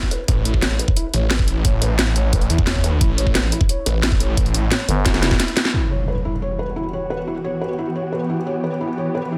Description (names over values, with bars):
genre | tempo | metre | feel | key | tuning
dark technical drum and bass | 176 BPM | 4/4 | straight | E dorian | A4 = 440 Hz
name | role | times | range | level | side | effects
electronic kick drum | drums | 0.0-5.4 s | none | -22 LUFS | equal | none
felt-muted upright piano | arpeggios | 0.1-9.4 s | E4 to C#5 | -29 LUFS | equal | sidechain pumping, dub echo
drum and bass drum kit | drums | 0.1-9.4 s | hi-hat, shaker, snare drum | -23 LUFS | equal | low-pass filter on hats, low-pass filter on snare, low-pass filter on perc, low-pass filter on room
snarling distorted saw bass | bass | 0.3-4.7 s | A1 to E2 | -22 LUFS | equal | distortion, overdrive, sidechain pumping
growling FM bass | bass | 4.9-5.4 s | G1 | -22 LUFS | equal | none
swarming drone | sustained chords | 6.5-9.4 s | E3 to G4 | -27 LUFS | equal | built-in reverb, sidechain pumping
impact | sound effects | 5.7-7.1 s | none | -26 LUFS | equal | none
room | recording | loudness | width
light reverb, digital ambience | dense, heavily limited modern master | -20 LUFS | mono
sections
0.0-5.7 A section; 5.7-9.4 B section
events
drum fill 5.1-5.7; kick drops out 5.4-5.7; band accent 5.7; impact 5.7-7.1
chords
0.3 A; 5.7 Em